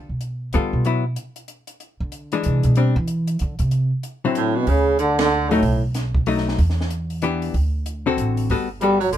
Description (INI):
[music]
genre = jazz, small-group swing and bop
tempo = 188 BPM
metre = 3/4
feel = swing 62% on 8ths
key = D major from 4.7 s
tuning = A4 = 441 Hz
[part]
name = upright bass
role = bass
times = 0.0-9.2 s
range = G1 to E3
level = -21 LUFS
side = right 1 dB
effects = none
[part]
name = compact cocktail drum kit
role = drums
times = 0.2-9.2 s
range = hi-hat, kick drum, ride cymbal, snare drum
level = -28 LUFS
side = right 1 dB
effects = none
[part]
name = hollow-body jazz guitar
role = accompaniment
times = 0.5-9.0 s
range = D3 to A4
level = -22 LUFS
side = left 5 dB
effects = none
[part]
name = breathy trombone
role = melody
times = 4.4-5.8, 8.8-9.2 s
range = A2 to G3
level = -20 LUFS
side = right 1 dB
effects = none
[part]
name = warm baritone saxophone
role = second line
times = 4.4-5.8, 8.8-9.2 s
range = A2 to G3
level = -23 LUFS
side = right 5 dB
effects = none
[sound]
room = light reverb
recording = minimal, uncompressed stereo recording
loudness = -18 LUFS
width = side -11 dB against mid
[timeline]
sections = 0.0-4.7 A section; 4.7-9.2 B section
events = upright bass solo 0.0-4.7; band accent 5.2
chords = 0.0 G9; 0.9 Bsus4; 1.8 E7b13; 2.8 Bmadd11; 3.7 D9; 4.7 Dmaj7(no3); 5.6 B7; 6.6 Em7; 7.5 D7; 8.5 Gmaj9